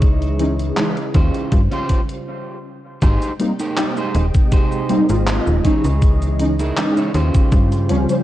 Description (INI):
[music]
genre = vaporwave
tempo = 80 BPM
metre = 4/4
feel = swing 53% on 16ths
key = Ab major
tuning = A4 = 436 Hz
[part]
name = soft string machine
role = sustained chords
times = 0.0-8.2 s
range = C3 to G5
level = -26 LUFS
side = equal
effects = ensemble chorus, vintage 12-bit sampler grit
[part]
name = electric guitar at the edge of break-up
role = riff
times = 0.0-8.2 s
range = Db4 to Db5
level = -25 LUFS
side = right 2 dB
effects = wide subtle chorus, analog delay
[part]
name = slap-like FM bass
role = bass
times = 0.0-8.1 s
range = Eb1 to G2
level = -18 LUFS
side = equal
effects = none
[part]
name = detuned 8-bit digital drum machine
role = drums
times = 0.0-8.2 s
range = cabasa, handclaps, hi-hat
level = -27 LUFS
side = equal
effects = vintage 12-bit sampler grit
[part]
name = electronic kick drum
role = drums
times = 0.0-7.7 s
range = none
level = -15 LUFS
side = equal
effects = vintage 12-bit sampler grit
[part]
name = warbly lo-fi synth keys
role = accompaniment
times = 0.4-8.2 s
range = Fb3 to C5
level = -20 LUFS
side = equal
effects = ensemble chorus, analog delay
[sound]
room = light reverb, digital ambience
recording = dark, warm production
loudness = -15 LUFS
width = side -14 dB against mid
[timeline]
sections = 0.0-3.0 A section; 3.0-8.2 B section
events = stop 2.3-3.0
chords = 0.0 Dbmadd9; 1.1 Eb13 (rootless); 3.0 Abmaj7; 5.6 Dbmadd9; 7.1 Eb13